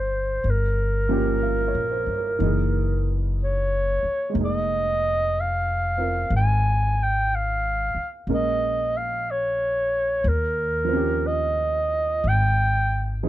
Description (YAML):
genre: jazz ballad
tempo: 61 BPM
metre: 4/4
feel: swing 66% on 8ths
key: unclear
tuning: A4 = 440 Hz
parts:
  - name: mellow clarinet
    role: melody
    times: 0.0-13.1 s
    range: Bb4 to Ab5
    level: -24 LUFS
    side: right 1 dB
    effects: none
  - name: warm upright piano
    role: accompaniment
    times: 0.0-13.3 s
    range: Eb3 to F5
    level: -28 LUFS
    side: right 3 dB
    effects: none
  - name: upright bass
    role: bass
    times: 0.0-13.3 s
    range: F1 to Eb2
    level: -25 LUFS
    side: equal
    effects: none
room: little or no reverb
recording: close, detailed microphones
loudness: -21 LUFS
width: side -14 dB against mid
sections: 0.0-13.3 A section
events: none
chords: 0.4 Gm7b5; 2.4 F#13; 4.3 Fm7; 8.3 Bbm7; 10.2 Eb13; 12.2 N.C.